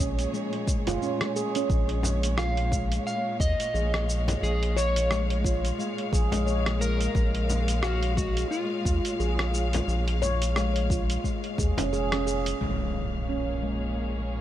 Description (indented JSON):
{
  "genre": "organic downtempo",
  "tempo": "88 BPM",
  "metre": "4/4",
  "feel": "swing 58% on 16ths",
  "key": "Bb minor",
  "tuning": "A4 = 441 Hz",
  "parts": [
    { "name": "rich studio string section", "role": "sustained chords", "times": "0.0-14.4 s", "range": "Bb2 to F5", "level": "-34 LUFS", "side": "equal", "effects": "sidechain pumping, low-pass filter" },
    { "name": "handpan", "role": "arpeggios", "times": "0.0-14.3 s", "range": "Ab3 to F5", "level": "-31 LUFS", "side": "equal", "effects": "low-pass filter, ping-pong delay" },
    { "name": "round analog bass", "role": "bass", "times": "0.0-14.4 s", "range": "F1 to Eb2", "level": "-28 LUFS", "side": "equal", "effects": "sidechain pumping" },
    { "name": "dusty soul sampler-style drum kit", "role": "drums", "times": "0.0-12.6 s", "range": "cabasa, hi-hat, rim click", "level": "-34 LUFS", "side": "equal", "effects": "overdrive, low-pass filter on perc, low-pass filter on snare, low-pass filter on hats" },
    { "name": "electronic kick drum", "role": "drums", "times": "0.7-11.7 s", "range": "none", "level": "-28 LUFS", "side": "equal", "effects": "none" },
    { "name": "frame drum", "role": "percussion", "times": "0.9-11.9 s", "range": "none", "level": "-33 LUFS", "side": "left 2 dB", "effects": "none" },
    { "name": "electric slide guitar", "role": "melody", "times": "2.4-11.9 s", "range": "F4 to F5", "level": "-32 LUFS", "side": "equal", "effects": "tape echo" },
    { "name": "impact", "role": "sound effects", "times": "12.6-14.4 s", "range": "none", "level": "-35 LUFS", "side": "equal", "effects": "none" }
  ],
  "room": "little or no reverb",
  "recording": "none",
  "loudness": "-24 LUFS",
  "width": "side -12 dB against mid",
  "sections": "0.0-12.6 A section; 12.6-14.4 B section",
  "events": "band accent 12.1-12.4; impact 12.6-14.4; filter sweep on handpan 12.6-14.4; filter sweep on string section 12.6-14.4",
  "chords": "0.0 Bbm7"
}